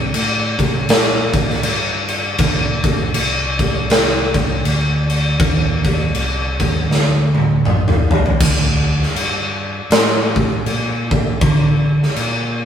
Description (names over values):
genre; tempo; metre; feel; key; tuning
stoner and doom metal; 80 BPM; 4/4; swing 60% on 8ths; unclear; A4 = 440 Hz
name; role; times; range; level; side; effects
overdriven picked electric bass; bass; 0.0-12.7 s; F1 to D3; -20 LUFS; equal; tube saturation
big rock drum kit; drums; 0.1-12.4 s; crash cymbal, kick drum, snare drum, toms; -16 LUFS; equal; none
room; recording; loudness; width
light reverb; rough rehearsal-room recording; -14 LUFS; side -9 dB against mid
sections
0.0-8.4 A section; 8.4-12.7 B section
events
drum fill 6.9-8.4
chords
none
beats
0.14 0.89 1.64 | 2.39 3.14 3.89 4.64 | 5.39 6.14 6.90 7.65 | 8.40 9.15 9.91 10.66 | 11.41 12.16